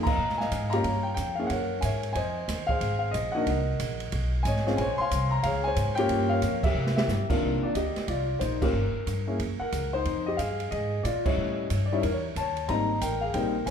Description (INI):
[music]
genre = jazz piano trio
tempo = 182 BPM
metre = 4/4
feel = swing 64% on 8ths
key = F minor, C minor from 7.4 s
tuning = A4 = 440 Hz
[part]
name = warm concert grand piano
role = melody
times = 0.0-13.7 s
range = C3 to C6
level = -27 LUFS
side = left 2 dB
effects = none
[part]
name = upright bass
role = bass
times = 0.0-13.7 s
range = G1 to C3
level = -30 LUFS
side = equal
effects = none
[part]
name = open jazz drum kit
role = drums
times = 0.1-13.7 s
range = crash cymbal, hi-hat, kick drum, ride cymbal, snare drum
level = -34 LUFS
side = right 3 dB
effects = none
[sound]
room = moderate recital hall reverb, RT60 1.5 s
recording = recorded in a church or concert hall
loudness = -25 LUFS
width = side -7 dB against mid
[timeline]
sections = 0.0-7.4 A section; 7.4-13.7 B section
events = band accent 0.0, 6.6, 8.6, 11.2; drum fill 6.8-7.1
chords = 0.0 Db69; 0.8 Gm7b5; 1.5 Gb9; 2.2 Fm7; 3.5 Cm7b5; 4.1 B69; 4.8 Bbm9; 6.1 Gm7b5; 6.8 C7; 7.4 Cm11; 8.7 Gm; 9.4 F#; 10.1 Fm7; 11.4 A7#11; 12.7 Abmaj9